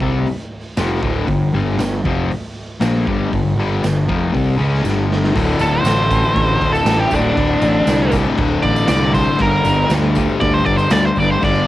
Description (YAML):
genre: garage rock duo or trio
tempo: 118 BPM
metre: 4/4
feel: straight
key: D minor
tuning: A4 = 442 Hz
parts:
  - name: fuzz guitar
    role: riff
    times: 0.0-11.7 s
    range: D2 to C#4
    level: -18 LUFS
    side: left 4 dB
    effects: distortion, cassette tape
  - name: fuzz picked electric bass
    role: bass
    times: 0.0-11.6 s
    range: D1 to D2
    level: -19 LUFS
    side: right 1 dB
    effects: overdrive
  - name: raw garage drum kit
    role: drums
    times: 0.0-11.6 s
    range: crash cymbal, hi-hat, kick drum, snare drum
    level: -22 LUFS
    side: right 1 dB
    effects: cassette tape
  - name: tambourine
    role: percussion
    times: 0.8-11.6 s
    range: none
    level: -38 LUFS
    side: right 9 dB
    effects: none
  - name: octave-fuzz lead guitar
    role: melody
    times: 5.6-11.7 s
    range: D4 to D5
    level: -18 LUFS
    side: right 1 dB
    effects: distortion, cassette tape
room: light reverb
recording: home recording on cassette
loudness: -14 LUFS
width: side -15 dB against mid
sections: 0.0-5.3 A section; 5.3-11.7 B section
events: drum fill 4.8-5.3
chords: 0.0 Dm; 1.3 G5; 5.3 D5; 9.4 Gm